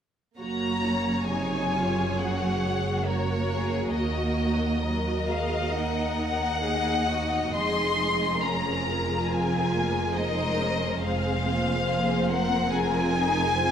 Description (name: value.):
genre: cinematic.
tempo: 68 BPM.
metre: 4/4.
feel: rubato.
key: Gb lydian.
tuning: A4 = 441 Hz.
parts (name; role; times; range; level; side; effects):
rich studio violin section; melody; 0.4-13.7 s; Db5 to C6; -28 LUFS; left 4 dB; none.
rich studio violin section; second line; 0.4-13.7 s; Gb4 to Eb5; -31 LUFS; left 3 dB; none.
warm studio viola section; accompaniment; 0.4-13.7 s; C3 to Gb4; -30 LUFS; right 2 dB; none.
clear studio double bass section; bass; 0.4-13.7 s; F1 to Eb2; -32 LUFS; right 3 dB; none.
rich studio cello section; bass; 0.4-13.7 s; Eb2 to Gb2; -31 LUFS; right 2 dB; none.
room: wet scoring stage reverb, RT60 1.7 s.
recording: none.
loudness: -24 LUFS.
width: side -8 dB against mid.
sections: 0.4-13.7 A section.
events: none.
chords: 0.4 Gb; 4.0 Ebm; 7.6 Db6/F; 11.0 Fm.